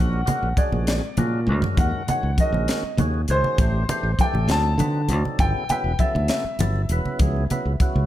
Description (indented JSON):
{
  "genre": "electric jazz fusion",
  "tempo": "66 BPM (dotted quarters)",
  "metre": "6/8",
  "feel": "straight",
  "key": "unclear",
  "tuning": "A4 = 440 Hz",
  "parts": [
    { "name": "warm concert grand piano", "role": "melody", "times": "0.0-8.1 s", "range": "C5 to A5", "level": "-27 LUFS", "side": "left 1 dB", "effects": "none" },
    { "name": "percussive tonewheel organ", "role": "accompaniment", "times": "0.0-8.1 s", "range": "C#3 to C#5", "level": "-30 LUFS", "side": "equal", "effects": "slow rotary speaker" },
    { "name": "fingered electric bass", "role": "bass", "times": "0.0-8.1 s", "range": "E1 to D3", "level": "-23 LUFS", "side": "equal", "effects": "none" },
    { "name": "congas", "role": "percussion", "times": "0.1-8.1 s", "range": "none", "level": "-26 LUFS", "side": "left 1 dB", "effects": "none" },
    { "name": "crisp fusion drum kit", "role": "drums", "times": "0.3-7.9 s", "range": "hi-hat, kick drum, snare drum, toms", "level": "-23 LUFS", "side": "equal", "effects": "none" }
  ],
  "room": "light reverb",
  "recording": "none",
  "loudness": "-19 LUFS",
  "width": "side -13 dB against mid",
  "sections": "0.0-8.1 A section",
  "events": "drum fill 1.5-1.8",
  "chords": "0.0 A#7alt; 1.8 D#m7; 3.6 Am7; 4.5 D7b9; 5.4 G69; 7.2 C#m7",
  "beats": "0.88 | 1.78 2.69 | 3.59 4.49 | 5.39 6.30 | 7.20"
}